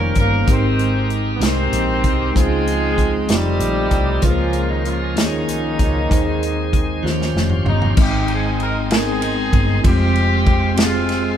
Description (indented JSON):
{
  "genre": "slow gospel",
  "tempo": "64 BPM (dotted quarters)",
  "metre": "6/8",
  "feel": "straight",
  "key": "Ab major",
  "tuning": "A4 = 441 Hz",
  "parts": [
    { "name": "breathy tenor saxophone", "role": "melody", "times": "0.0-7.4 s", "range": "Eb3 to C4", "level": "-24 LUFS", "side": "right 2 dB", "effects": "none" },
    { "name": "clear horn section", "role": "melody", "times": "0.0-11.4 s", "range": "Ab3 to C5", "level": "-23 LUFS", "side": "left 1 dB", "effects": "none" },
    { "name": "mellow tine electric piano", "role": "accompaniment", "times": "0.0-11.4 s", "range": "Ab2 to Eb5", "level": "-23 LUFS", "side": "equal", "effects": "medium stereo tremolo" },
    { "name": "bright tonewheel organ", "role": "sustained chords", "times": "0.0-11.4 s", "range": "Eb3 to G5", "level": "-27 LUFS", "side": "right 2 dB", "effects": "fast rotary speaker, overdrive" },
    { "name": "hollow-body short-scale fingered electric bass", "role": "bass", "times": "0.0-11.4 s", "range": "F1 to Eb2", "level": "-21 LUFS", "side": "equal", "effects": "none" },
    { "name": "warm soul drum kit", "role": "drums", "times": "0.2-11.2 s", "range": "crash cymbal, hi-hat, kick drum, ride cymbal, snare drum, toms", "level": "-19 LUFS", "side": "equal", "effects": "none" }
  ],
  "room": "moderate large studio reverb, RT60 1.2 s",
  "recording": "band playing live in one room",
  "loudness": "-15 LUFS",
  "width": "side -9 dB against mid",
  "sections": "0.0-8.0 A section; 8.0-11.4 B section",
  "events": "drum fill 7.0-8.0",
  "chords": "0.5 Abmaj9; 2.4 Dbmaj9#11; 3.3 F7b13; 4.2 Bbm9/Db; 5.2 Eb9sus4; 6.1 Ab/Eb; 7.0 Eb13; 8.0 Ab; 9.8 Fm"
}